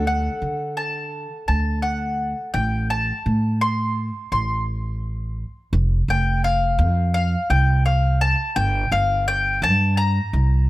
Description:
indie folk with a building arrangement; 85 BPM; 4/4; straight; A4 = 440 Hz
mandolin; melody; 0.0-10.7 s; F5 to C6; -23 LUFS; left 2 dB
fingerpicked steel-string acoustic guitar; accompaniment; 0.0-2.9 s; A4; -34 LUFS; equal
upright bass; bass; 0.0-10.7 s; F1 to D3; -20 LUFS; equal
studio reverb; -19 LUFS; side -17 dB against mid
0.0-5.7 A section; 5.7-10.7 B section
build-up 0.0-5.7
0.0 D; 2.6 Am; 5.7 F5; 8.6 Gm
| 0.07 0.78 1.49 2.20 | 2.91 3.61 4.32 5.03 | 5.73 6.44 7.14 7.85 | 8.56 9.26 9.97 10.68

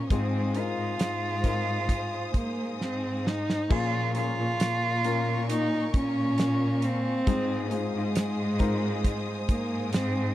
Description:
pop ballad; 68 BPM; 4/4; straight; Bb minor; A4 = 440 Hz
dark cello; melody; 0.0-10.3 s; Ab3 to F4; -28 LUFS; right 1 dB
dark grand piano; accompaniment; 0.0-10.3 s; Ab2 to Bb4; -35 LUFS; left 8 dB
warm studio string section; sustained chords; 0.0-10.3 s; Bb4 to Eb6; -38 LUFS; equal
rich studio cello section; bass; 0.0-10.3 s; Ab2 to Bb2; -31 LUFS; equal
damped 70s drum kit; drums; 0.1-10.1 s; crash cymbal, hi-hat, kick drum, snare drum; -26 LUFS; right 1 dB
little or no reverb; dry, close 1970s-style studio recording; -25 LUFS; side -14 dB against mid
0.0-3.7 A section; 3.7-10.3 A section
drum fill 2.8-3.7
0.1 Fm7/Ab; 3.7 Bbm7; 7.3 Fm7/Ab
| 0.10 0.99 1.89 2.80 | 3.70 4.60 5.50 6.38 | 7.27 8.16 9.04 9.93

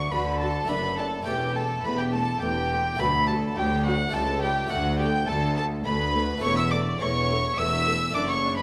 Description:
classical, baroque-style concerto movement with solo episodes; 104 BPM; 3/4; straight; D major; A4 = 439 Hz
warm chamber violin section; melody; 0.0-8.6 s; F#5 to E6; -34 LUFS; equal
warm violin; melody; 0.0-8.6 s; F#5 to E6; -30 LUFS; equal
harpsichord; accompaniment; 0.0-8.6 s; C#2 to A4; -38 LUFS; equal
rich chamber double bass section; bass; 0.0-8.6 s; E1 to D2; -32 LUFS; equal
warm chamber cello section; bass; 0.0-8.6 s; C#2 to D3; -33 LUFS; equal
rich chamber violin section; second line; 0.1-8.6 s; F#4 to E5; -36 LUFS; equal
dark chamber viola section; accompaniment; 0.1-8.5 s; F#3 to F#4; -38 LUFS; equal
wet recital hall reverb, RT60 1.5 s; -25 LUFS; mono
0.0-8.6 A section
0.0 D; 0.7 D/F#; 1.3 A7/E; 3.0 D; 4.1 A7/C#; 4.7 D; 6.4 A7/E
0.12 0.69 | 1.27 1.84 2.42 | 2.99 3.57 4.14 | 4.71 5.29 5.86 | 6.43 7.00 7.58 | 8.15

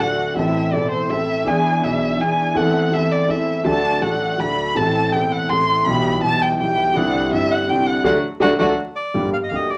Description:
tango; 164 BPM; 3/4; rubato; A4 = 438 Hz
dark violin; second line; 0.0-8.7 s; C5 to C6; -23 LUFS; equal
warm concert grand piano; accompaniment; 0.0-9.7 s; E1 to A4; -22 LUFS; equal
dark chamber string section; stabs; 0.0-8.7 s; A3 to A4; -29 LUFS; equal
upright bass; bass; 0.0-9.7 s; E1 to E2; -37 LUFS; equal
bandoneon; melody; 9.0-9.8 s; D5 to F5; -26 LUFS; equal
wet small room reverb, RT60 0.5 s; vinyl crackle; -19 LUFS; mono
0.0-9.1 A section
violin solo 0.0-9.1; band accent 8.0-9.1
0.4 Am; 1.5 E7; 2.6 Am/E; 3.7 D; 4.8 Am; 5.9 Em/B; 7.0 Cadd9; 8.0 D; 9.1 Gm
| 0.36 0.73 1.10 | 1.47 1.83 2.20 | 2.56 2.92 3.29 | 3.65 4.02 4.39 | 4.76 5.13 5.49 | 5.86 6.23 6.59 | 6.95 7.32 7.68 | 8.04 8.41 8.78 | 9.15 9.51

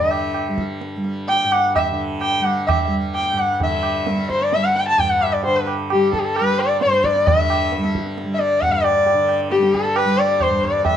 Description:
indian classical, Hindustani; 131 BPM; 4/4; straight; G raga bilaval; A4 = 439 Hz
rich sarangi; melody; 0.0-11.0 s; G4 to A5; -18 LUFS; left 2 dB; slapback echo
tanpura; drone; 0.0-11.0 s; G2 to G3; -25 LUFS; right 1 dB
tabla; percussion; 0.1-11.0 s; -24 LUFS; right 6 dB
light reverb; dark, warm production; -16 LUFS; side -9 dB against mid
0.0-3.6 A section; 3.6-11.0 B section
speeding up 0.0-11.0
0.34 0.81 1.28 | 1.75 2.21 2.68 3.14 | 3.60 4.07 4.53 4.99 | 5.44 5.90 6.36 6.81 | 7.27 7.72 8.17 8.62 | 9.07 9.52 9.97 10.42 | 10.86

